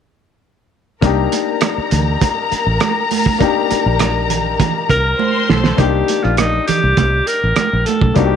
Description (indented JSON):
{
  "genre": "lush 1970s-style soul",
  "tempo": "101 BPM",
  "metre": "4/4",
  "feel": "straight",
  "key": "C dorian",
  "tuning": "A4 = 440 Hz",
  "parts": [
    { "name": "warm studio string section", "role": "second line", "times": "1.0-5.8 s", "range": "Bb4 to C6", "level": "-20 LUFS", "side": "left 5 dB", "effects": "none" },
    { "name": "warm concert grand piano", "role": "accompaniment", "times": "1.0-8.4 s", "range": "Bb3 to G4", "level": "-21 LUFS", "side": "left 12 dB", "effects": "none" },
    { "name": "fingered electric bass", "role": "bass", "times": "1.0-8.4 s", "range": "A1 to D2", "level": "-17 LUFS", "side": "equal", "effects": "none" },
    { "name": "cloth-damped thuddy drum kit", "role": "drums", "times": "1.0-8.3 s", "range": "hi-hat, kick drum, rim click, snare drum", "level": "-18 LUFS", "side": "right 4 dB", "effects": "none" },
    { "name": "congas", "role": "percussion", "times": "1.0-8.3 s", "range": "none", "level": "-23 LUFS", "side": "right 11 dB", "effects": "none" },
    { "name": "bright alto saxophone", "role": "melody", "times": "4.9-8.4 s", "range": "Eb4 to Bb4", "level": "-17 LUFS", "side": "equal", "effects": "slapback echo" }
  ],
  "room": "light reverb, small room reverb",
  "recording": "1960s-style stereo with parts hard left and right",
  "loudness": "-13 LUFS",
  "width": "side -8 dB against mid",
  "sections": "1.0-5.8 A section; 5.8-8.4 B section",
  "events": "drum fill 5.2-5.8",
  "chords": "1.0 Cm9"
}